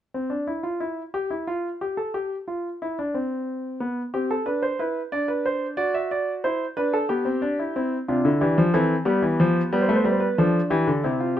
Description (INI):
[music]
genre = classical, baroque-style 3-part fugue for grand piano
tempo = 91 BPM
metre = 3/4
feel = straight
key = unclear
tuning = A4 = 436 Hz
[part]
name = warm concert grand piano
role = solo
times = 0.1-11.4 s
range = C3 to E5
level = -22 LUFS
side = equal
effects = none
[sound]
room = little or no reverb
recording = none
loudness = -22 LUFS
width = side -11 dB against mid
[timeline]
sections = 0.0-11.4 A section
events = none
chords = 0.0 N.C.; 3.8 G/B (rootless); 5.1 Bm/D; 5.8 D7/F#; 7.1 G/B; 7.7 C; 9.1 G; 9.7 G7